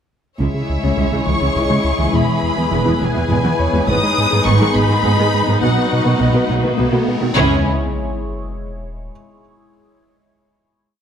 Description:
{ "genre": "cinematic, hybrid orchestral and electronic film score", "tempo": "69 BPM (dotted quarters)", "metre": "6/8", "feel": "straight", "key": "C# minor", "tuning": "A4 = 440 Hz", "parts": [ { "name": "dark symphonic violin section", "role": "melody", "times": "0.4-7.7 s", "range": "C#5 to D#6", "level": "-22 LUFS", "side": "left 3 dB", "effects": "none" }, { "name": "warm symphonic violin section", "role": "second line", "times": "0.4-7.7 s", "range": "E4 to C#5", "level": "-24 LUFS", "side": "equal", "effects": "none" }, { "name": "warm symphonic viola section", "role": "accompaniment", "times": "0.4-7.7 s", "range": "C#3 to E4", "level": "-24 LUFS", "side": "equal", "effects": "none" }, { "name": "mellow French horn section", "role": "sustained chords", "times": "0.4-7.6 s", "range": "F#3 to E4", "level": "-26 LUFS", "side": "left 5 dB", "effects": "none" }, { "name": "phased analog pad", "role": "sustained chords", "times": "0.5-7.7 s", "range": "G#3 to C#5", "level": "-25 LUFS", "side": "left 2 dB", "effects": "phaser, chorus" }, { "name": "thumb-piano-like synth pluck", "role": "arpeggios", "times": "0.4-7.3 s", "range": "C#3 to B4", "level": "-25 LUFS", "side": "left 3 dB", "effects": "chorus, tape echo" }, { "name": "fat analog bass", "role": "riff", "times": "0.4-7.3 s", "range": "C#2 to B3", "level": "-21 LUFS", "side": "right 2 dB", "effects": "none" }, { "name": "dark symphonic cello section", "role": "bass", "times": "0.4-7.7 s", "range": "C#2 to C#3", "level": "-22 LUFS", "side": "right 2 dB", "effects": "none" }, { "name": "warm symphonic double bass section", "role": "bass", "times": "0.4-7.7 s", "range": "E1 to C#2", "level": "-22 LUFS", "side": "right 2 dB", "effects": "none" }, { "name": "warm concert grand piano", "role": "texture", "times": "1.6-7.4 s", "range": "D#4 to D#5", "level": "-30 LUFS", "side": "left 1 dB", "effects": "tape echo" }, { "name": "riser and sub drop", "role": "sound effects", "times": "5.4-9.1 s", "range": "none", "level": "-26 LUFS", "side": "equal", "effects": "none" } ], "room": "moderate scoring stage reverb, RT60 1.6 s", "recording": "none", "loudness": "-14 LUFS", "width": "side -8 dB against mid", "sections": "0.4-7.4 theme; 7.4-9.1 final chord", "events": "riser 5.4-7.4; impact 7.4-9.1", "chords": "0.4 C#m; 2.1 E; 3.9 G#m; 5.6 B; 7.4 C#m", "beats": "| 0.41 1.27 | 2.14 3.01 | 3.88 4.75 | 5.62 6.49 | 7.36 8.23" }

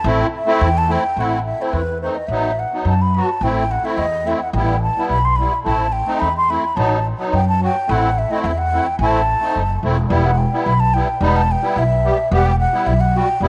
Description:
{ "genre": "klezmer", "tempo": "108 BPM", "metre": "2/4", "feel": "straight", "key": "A dorian sharp4", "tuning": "A4 = 439 Hz", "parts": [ { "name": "mellow hollow concert flute", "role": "melody", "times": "0.0-13.5 s", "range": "B4 to C6", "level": "-22 LUFS", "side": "equal", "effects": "none" }, { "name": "musette accordion", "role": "accompaniment", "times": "0.0-13.5 s", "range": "F#3 to G4", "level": "-24 LUFS", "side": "equal", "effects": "none" }, { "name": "upright bass", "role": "bass", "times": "0.0-13.5 s", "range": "E1 to F#2", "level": "-22 LUFS", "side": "equal", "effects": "none" } ], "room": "light reverb, studio ambience", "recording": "none", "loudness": "-18 LUFS", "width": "mono", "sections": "0.0-1.2 A section; 1.2-10.1 B section; 10.1-13.5 C section", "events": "flute solo 0.0-1.2", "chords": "0.0 Am; 2.3 B/A; 3.4 Am; 4.5 Em/A; 5.7 Am; 6.8 B/A; 7.9 Am; 10.1 Em", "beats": "| 0.05 0.61 | 1.18 1.74 | 2.30 2.87 | 3.43 3.99 | 4.55 5.11 | 5.67 6.23 | 6.78 7.34 | 7.89 8.45 | 9.00 9.55 | 10.11 10.66 | 11.21 11.76 | 12.31 12.86 | 13.41" }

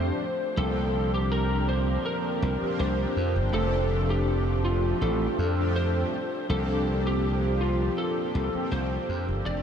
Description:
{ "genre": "vaporwave", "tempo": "81 BPM", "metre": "4/4", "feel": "swing 53% on 16ths", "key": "unclear", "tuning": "A4 = 440 Hz", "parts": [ { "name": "lightly driven lead guitar", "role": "melody", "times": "0.0-9.6 s", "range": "F4 to D5", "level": "-30 LUFS", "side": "left 1 dB", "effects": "ensemble chorus, tape echo" }, { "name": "mellow synth brass", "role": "accompaniment", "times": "0.0-9.6 s", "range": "F3 to G4", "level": "-29 LUFS", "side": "right 1 dB", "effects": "wide subtle chorus, ping-pong delay" }, { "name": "glassy slap bass", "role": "bass", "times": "0.0-9.6 s", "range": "F1 to F2", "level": "-27 LUFS", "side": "equal", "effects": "none" } ], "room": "wet huge ambient reverb, RT60 7.4 s", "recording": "dreamy mix soaked in reverb, cassette tape", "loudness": "-24 LUFS", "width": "side -8 dB against mid", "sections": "0.0-9.6 A section", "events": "fade-out 7.5-9.6", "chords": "0.2 C9sus4; 3.5 F6; 6.1 C9sus4", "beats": "| 0.57 1.31 2.05 2.79 | 3.54 4.28 5.02 5.76 | 6.50 7.24 7.98 8.72 | 9.46" }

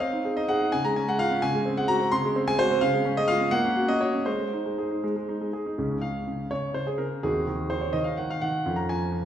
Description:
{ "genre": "classical-period piano sonatina", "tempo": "78-88 BPM (dotted quarters)", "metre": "6/8", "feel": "rubato", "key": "Db major", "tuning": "A4 = 442 Hz", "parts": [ { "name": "bright concert grand piano", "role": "solo", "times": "0.0-9.2 s", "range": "Db2 to C6", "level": "-24 LUFS", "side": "equal", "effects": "none" } ], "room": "wet recital hall reverb, RT60 1.5 s", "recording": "heard from further back in the room", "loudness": "-24 LUFS", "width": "side -10 dB against mid", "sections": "0.0-5.8 A section; 5.8-9.2 B section", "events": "none", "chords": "0.0 Ab/C; 0.7 Db; 1.4 Ab7/Db; 2.8 Db; 3.5 Gb/Bb; 4.3 Ab; 5.8 Db; 7.2 Ab7/Eb; 8.7 Db/F", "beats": "| 0.00 0.73 | 1.43 2.11 | 2.80 3.51 | 4.27 5.03 | 5.77 6.50 | 7.23 7.94 | 8.65" }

